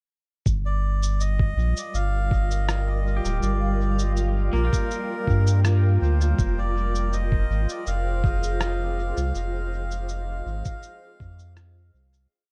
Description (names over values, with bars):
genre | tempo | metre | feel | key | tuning
ambient dub | 81 BPM | 4/4 | straight | F dorian | A4 = 440 Hz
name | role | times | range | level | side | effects
granular cloud pad | sustained chords | 1.3-12.3 s | G3 to G5 | -35 LUFS | equal | built-in reverb
warm sub bass | bass | 0.5-12.3 s | D1 to G2 | -25 LUFS | equal | none
electronic kick drum | drums | 0.5-11.4 s | none | -26 LUFS | equal | none
electronic shaker and rim click | drums | 0.5-12.3 s | none | -35 LUFS | equal | dub echo
backwards swelling texture | texture | 1.6-12.3 s | F4 to F5 | -42 LUFS | equal | none
melodica | melody | 0.7-11.5 s | Bb4 to F5 | -35 LUFS | equal | tape echo
pedal steel guitar | arpeggios | 3.2-7.8 s | Bb3 to G5 | -39 LUFS | equal | tape echo
room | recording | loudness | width
digital ambience | dark, warm production | -24 LUFS | mono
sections
0.5-12.3 groove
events
fade-out 8.4-12.3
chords
0.5 Gm7; 6.4 Fm7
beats
| 0.46 1.20 1.94 2.68 | 3.42 4.17 4.91 5.65 | 6.39 7.13 7.87 8.61 | 9.35 10.09 10.83 11.57